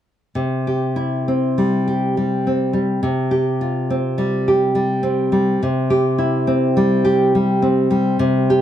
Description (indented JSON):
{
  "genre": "romantic piece for solo classical guitar",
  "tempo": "69 BPM",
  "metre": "3/4",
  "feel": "rubato",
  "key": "C major",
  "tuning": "A4 = 440 Hz",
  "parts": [
    { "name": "nylon-string guitar", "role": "solo", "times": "0.4-8.6 s", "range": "C3 to G4", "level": "-16 LUFS", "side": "equal", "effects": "none" }
  ],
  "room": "studio ambience",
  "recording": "dry, close 1970s-style studio recording",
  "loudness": "-16 LUFS",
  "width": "side -10 dB against mid",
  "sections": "0.3-8.6 A section",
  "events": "none",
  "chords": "0.3 C; 3.0 Csus4; 5.6 C"
}